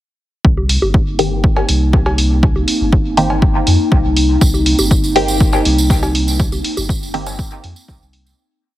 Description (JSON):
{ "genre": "dub techno", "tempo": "121 BPM", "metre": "4/4", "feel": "straight", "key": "C minor", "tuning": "A4 = 440 Hz", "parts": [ { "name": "warbly tape-like pad", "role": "sustained chords", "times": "0.8-8.3 s", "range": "Bb3 to Eb4", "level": "-20 LUFS", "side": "equal", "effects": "chorus, built-in reverb, sidechain pumping" }, { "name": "soft dub sub bass", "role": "bass", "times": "0.4-8.3 s", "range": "G1 to F2", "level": "-17 LUFS", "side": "equal", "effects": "sidechain pumping" }, { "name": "electronic kick drum", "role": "drums", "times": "0.4-8.0 s", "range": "none", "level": "-14 LUFS", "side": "equal", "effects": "none" }, { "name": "bongos and cowbell", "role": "percussion", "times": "0.6-7.4 s", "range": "none", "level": "-24 LUFS", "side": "equal", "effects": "sidechain pumping on perc, dub echo" }, { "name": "electronic hi-hat", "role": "drums", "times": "0.7-8.2 s", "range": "none", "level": "-21 LUFS", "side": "right 1 dB", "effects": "none" }, { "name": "filtered dub chord stab", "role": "stabs", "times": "1.2-7.3 s", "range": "Eb3 to G4", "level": "-19 LUFS", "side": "equal", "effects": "phaser, sidechain pumping, dub echo" }, { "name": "tambourine", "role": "percussion", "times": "4.4-8.4 s", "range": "none", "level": "-24 LUFS", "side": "right 4 dB", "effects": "none" } ], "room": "light reverb, digital ambience", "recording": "heavily compressed radio sound", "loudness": "-12 LUFS", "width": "side -14 dB against mid", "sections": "0.4-8.4 groove", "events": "fade-out 5.7-8.4", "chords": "0.4 Cm7" }